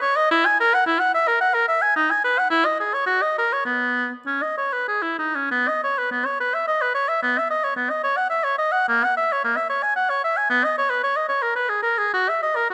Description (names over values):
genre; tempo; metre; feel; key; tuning
classical, baroque-style fantasia for unaccompanied oboe; 90-115 BPM; 3/4; rubato; B major; A4 = 440 Hz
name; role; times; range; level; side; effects
warm oboe; solo; 0.0-12.7 s; A#3 to G#5; -21 LUFS; equal; none
room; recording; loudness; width
moderate recital hall reverb, RT60 1.6 s; close, detailed microphones; -21 LUFS; mono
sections
0.0-5.5 A section; 5.5-12.7 B section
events
none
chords
none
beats
| 0.30 0.87 1.41 | 1.95 2.50 3.08 | 3.67 4.28 4.88 | 5.52 6.12 6.67 | 7.21 7.76 8.30 | 8.88 9.43 9.97 | 10.51 11.03 11.56 | 12.12 12.69